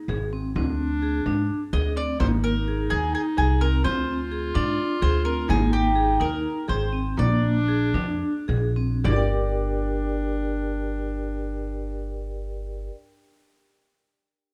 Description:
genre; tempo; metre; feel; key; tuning
contemporary instrumental, chamber music in an uneven meter; 207-256 BPM (eighths); 7/8; straight; G phrygian; A4 = 443 Hz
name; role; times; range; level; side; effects
warm clarinet; second line; 0.0-12.9 s; D4 to F4; -32 LUFS; equal; none
vibraphone with medium mallets; arpeggios; 0.1-13.0 s; Bb3 to G5; -32 LUFS; equal; none
upright bass; bass; 0.1-12.9 s; G1 to Ab2; -28 LUFS; equal; none
frame drum; percussion; 0.1-9.3 s; none; -35 LUFS; equal; none
mandolin; melody; 1.7-12.9 s; G4 to Eb5; -30 LUFS; equal; none
room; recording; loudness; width
light reverb; dark, warm production; -24 LUFS; mono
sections
0.0-9.1 A section; 9.1-13.1 B section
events
slowing down 5.5-9.1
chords
0.0 Ab; 0.6 Csus2/D; 2.2 Abadd9; 3.8 Dm7b5; 5.5 Abadd9; 7.2 Bb7; 9.1 Gm

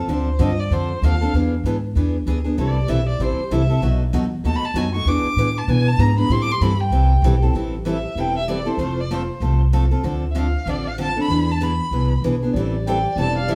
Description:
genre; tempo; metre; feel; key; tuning
acoustic string swing (jazz manouche); 193 BPM; 4/4; swing 58% on 8ths; A minor; A4 = 441 Hz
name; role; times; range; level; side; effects
picked steel-string acoustic guitar; accompaniment; 0.0-13.6 s; B2 to A4; -26 LUFS; equal; none
upright bass; bass; 0.0-13.6 s; E1 to B2; -22 LUFS; equal; none
warm violin; melody; 0.1-13.6 s; C5 to D6; -28 LUFS; equal; none
breathy soprano saxophone; second line; 12.5-13.6 s; D5; -32 LUFS; equal; none
room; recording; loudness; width
wet large studio reverb, RT60 0.9 s; band playing live in one room; -20 LUFS; mono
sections
0.0-7.5 A section; 7.5-13.6 B section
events
violin solo 0.0-7.5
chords
0.1 Dm7; 1.3 E7; 2.6 Am7; 3.8 B7; 5.1 E7; 6.3 Am7; 8.8 F; 10.0 Dm7; 11.3 E7; 12.5 Am7

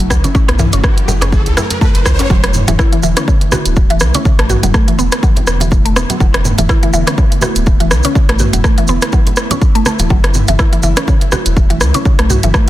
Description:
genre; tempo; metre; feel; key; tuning
afro house; 123 BPM; 4/4; swing 56% on 16ths; unclear; A4 = 440 Hz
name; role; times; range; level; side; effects
ethereal airy pad; sustained chords; 0.0-12.7 s; C#3 to E4; -23 LUFS; right 1 dB; ensemble chorus, built-in reverb, sidechain pumping
mallet-like synth pluck; arpeggios; 0.0-12.7 s; C#3 to F#4; -18 LUFS; equal; chorus, phaser, sidechain pumping, tape echo
round analog bass; bass; 0.0-12.5 s; D1 to C#2; -15 LUFS; equal; sidechain pumping
house drum kit; drums; 0.0-12.7 s; hi-hat, rim click, toms; -17 LUFS; equal; overdrive
riser; sound effects; 0.3-2.3 s; none; -23 LUFS; right 1 dB; none
electronic kick drum; drums; 0.1-12.7 s; none; -12 LUFS; equal; overdrive
maracas; percussion; 0.1-12.7 s; none; -25 LUFS; right 3 dB; none
congas; percussion; 0.2-12.5 s; none; -22 LUFS; right 2 dB; none
djembe; percussion; 0.5-2.3 s; none; -23 LUFS; left 2 dB; none
room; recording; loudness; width
digital ambience; dense, heavily limited modern master; -10 LUFS; side -14 dB against mid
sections
0.0-2.3 A section; 2.3-12.7 B section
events
riser 0.3-2.3; drop 2.3-12.7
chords
0.0 F#m7; 2.3 E7sus4; 10.1 F#m7

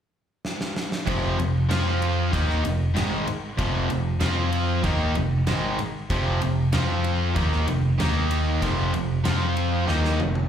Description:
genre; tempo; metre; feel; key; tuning
hard rock; 95 BPM; 4/4; straight; F minor; A4 = 440 Hz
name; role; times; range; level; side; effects
gated 80s drum kit; drums; 0.4-10.5 s; kick drum, ride cymbal, snare drum, toms; -30 LUFS; equal; none
cranked stack guitar; riff; 1.1-10.4 s; F2 to F4; -28 LUFS; left 9 dB; overdrive, spring reverb, slapback echo
distorted electric guitar; riff; 1.1-10.4 s; F2 to F4; -27 LUFS; right 9 dB; overdrive, slapback echo
picked electric bass; bass; 1.1-10.5 s; F1 to F2; -24 LUFS; equal; none
room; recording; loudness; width
light reverb; live gig heard through the venue's PA, club reverb; -21 LUFS; side -9 dB against mid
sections
0.0-1.1 A section; 1.1-10.5 B section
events
drum fill 0.4-1.1, 9.9-10.5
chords
0.0 N.C.; 1.1 Fm; 8.0 Eb5; 8.6 F5

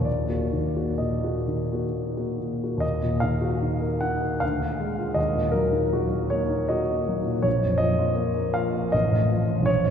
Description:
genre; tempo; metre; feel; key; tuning
classical, romantic character piece for solo piano; 62-82 BPM; 3/4; rubato; Eb minor; A4 = 440 Hz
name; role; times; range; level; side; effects
warm concert grand piano; solo; 0.0-9.9 s; A1 to Gb5; -22 LUFS; equal; none
room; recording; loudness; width
wet cathedral reverb, RT60 5.9 s; heard from further back in the room; -22 LUFS; side -8 dB against mid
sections
0.0-2.8 A section; 2.8-9.9 B section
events
none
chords
0.1 Ebm; 4.4 Ddim; 5.2 Ebm; 7.5 Bb5; 8.9 F7/A

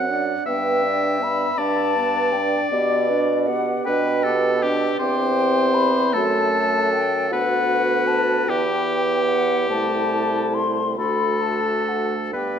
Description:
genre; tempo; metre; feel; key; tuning
classical, slow romantic movement for wind quintet; 42-54 BPM (dotted quarters); 6/8; rubato; G major; A4 = 440 Hz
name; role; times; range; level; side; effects
mellow hollow silver concert flute; melody; 0.0-12.6 s; D5 to C6; -25 LUFS; left 7 dB; none
clear oboe; second line; 0.0-12.6 s; G4 to F#5; -23 LUFS; left 1 dB; none
dark French horn; accompaniment; 0.0-12.6 s; A3 to D4; -27 LUFS; right 2 dB; none
mellow clarinet; accompaniment; 0.0-12.6 s; E4 to D5; -29 LUFS; right 5 dB; none
warm bassoon; bass; 0.0-12.6 s; C2 to B2; -24 LUFS; right 2 dB; none
room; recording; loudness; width
wet scoring stage reverb, RT60 2.0 s; none; -18 LUFS; side -8 dB against mid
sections
0.0-12.6 A section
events
none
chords
0.5 G; 2.7 G/B; 5.0 C/E; 6.2 F#m; 7.3 Bm/D; 8.5 Em; 9.7 Am/C; 11.0 D

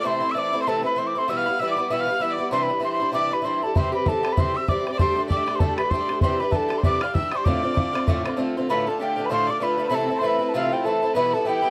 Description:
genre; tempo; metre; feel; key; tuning
celtic folk, Celtic reel; 194 BPM; 4/4; swing 57% on 8ths; D dorian; A4 = 440 Hz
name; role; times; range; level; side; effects
breathy mellow mid whistle; melody; 0.0-11.7 s; F5 to F6; -27 LUFS; equal; none
rich fiddle; second line; 0.0-11.7 s; F4 to F5; -31 LUFS; equal; none
fingerpicked twelve-string acoustic guitar; accompaniment; 0.0-11.7 s; D2 to G4; -28 LUFS; equal; none
bodhran; percussion; 3.8-8.3 s; none; -26 LUFS; equal; none
room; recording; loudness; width
light reverb; dark, warm production; -23 LUFS; mono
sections
0.0-8.7 A section; 8.7-11.7 A section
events
break 8.4-8.7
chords
0.0 Am/C; 1.3 Em/B; 2.5 Cadd9; 3.8 C; 5.0 Gsus2; 6.2 Cadd9; 7.5 Dm7; 8.7 Dm; 9.9 Am/C; 11.2 Em/B

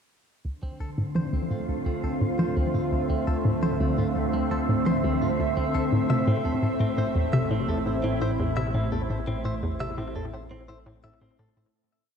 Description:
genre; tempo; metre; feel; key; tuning
ambient, sequencer-driven space music; 85 BPM; 4/4; straight; D minor; A4 = 440 Hz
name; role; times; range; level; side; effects
lush unison pad; sustained chords; 0.4-11.7 s; A2 to E5; -28 LUFS; right 1 dB; chorus, phaser
hollow square pluck; riff; 0.4-11.7 s; D2 to F3; -27 LUFS; equal; chorus, ping-pong delay
fat analog bass; bass; 0.5-11.7 s; A1 to D2; -37 LUFS; equal; none
wind-like tuned noise texture; texture; 1.2-11.8 s; C4 to C5; -33 LUFS; left 1 dB; built-in reverb
direct-recorded clean electric guitar; arpeggios; 0.6-11.5 s; C4 to E5; -37 LUFS; left 1 dB; auto-pan, ping-pong delay
room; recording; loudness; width
wet lush hall reverb, RT60 2.9 s; dark, warm production; -24 LUFS; side -7 dB against mid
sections
0.5-11.7 A section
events
fade-in on clean electric guitar 0.5-11.7; fade-in on analog synth bass 0.5-11.7; filter sweep on synth arpeggio sound 0.5-11.7; fade-out 8.0-11.7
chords
0.5 Dm7; 6.1 Am

